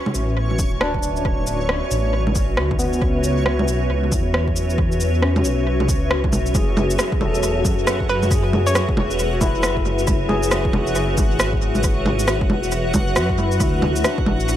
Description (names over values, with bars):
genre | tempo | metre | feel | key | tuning
future garage | 136 BPM | 4/4 | swing 62% on 16ths | F# minor | A4 = 440 Hz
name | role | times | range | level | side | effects
overdriven tine electric piano | accompaniment | 0.0-14.6 s | B3 to A4 | -27 LUFS | left 2 dB | fast tremolo, vintage 12-bit sampler grit, sidechain pumping, analog delay
granular cloud pad | sustained chords | 0.0-14.6 s | F#4 to E5 | -24 LUFS | equal | built-in reverb, vintage 12-bit sampler grit, sidechain pumping
backwards swelling texture | texture | 0.0-14.6 s | C#4 to F#5 | -31 LUFS | equal | built-in reverb
dark detuned saw bass | bass | 0.1-14.6 s | D1 to F#2 | -22 LUFS | equal | tube saturation, sidechain pumping
electronic bongos, shaker and rim click | drums | 0.1-14.6 s | none | -23 LUFS | right 1 dB | overdrive, tape echo
electronic kick drum | drums | 0.6-14.2 s | none | -22 LUFS | equal | overdrive
hollow square pluck | melody | 8.1-9.3 s | B4 to C#5 | -25 LUFS | equal | chorus, tape echo
room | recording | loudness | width
light reverb, digital ambience | echo-heavy mix, vinyl crackle | -17 LUFS | side -11 dB against mid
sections
0.0-6.5 A section; 6.5-14.6 B section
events
none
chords
0.0 D; 3.0 C#m; 6.5 F#m7; 13.6 D